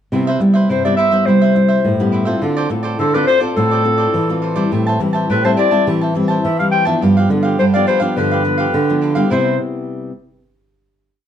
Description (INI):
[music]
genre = samba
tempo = 104 BPM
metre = 4/4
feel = straight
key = C major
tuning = A4 = 440 Hz
[part]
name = cavaquinho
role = accompaniment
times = 0.1-9.6 s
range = D4 to A5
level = -22 LUFS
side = right 2 dB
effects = none
[part]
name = nylon-string guitar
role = accompaniment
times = 0.1-10.1 s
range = G2 to A4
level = -20 LUFS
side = left 3 dB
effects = none
[part]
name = nylon-string guitar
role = bass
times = 0.1-9.6 s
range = G2 to G3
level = -17 LUFS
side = right 2 dB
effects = none
[part]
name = warm clarinet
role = melody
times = 0.7-9.6 s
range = A4 to G5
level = -16 LUFS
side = left 2 dB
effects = none
[sound]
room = moderate studio reverb, RT60 0.7 s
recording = dark, warm production, faint mains hum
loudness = -13 LUFS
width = side -9 dB against mid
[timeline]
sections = 0.1-9.3 A section; 9.3-11.3 final chord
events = none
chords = 0.1 Cmaj7; 2.4 Dm7; 4.7 Am7; 7.0 G7; 9.3 Cmaj7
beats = | 0.12 0.70 1.27 1.85 | 2.42 3.00 3.57 4.15 | 4.72 5.30 5.87 6.45 | 7.02 7.60 8.17 8.74 | 9.32 9.89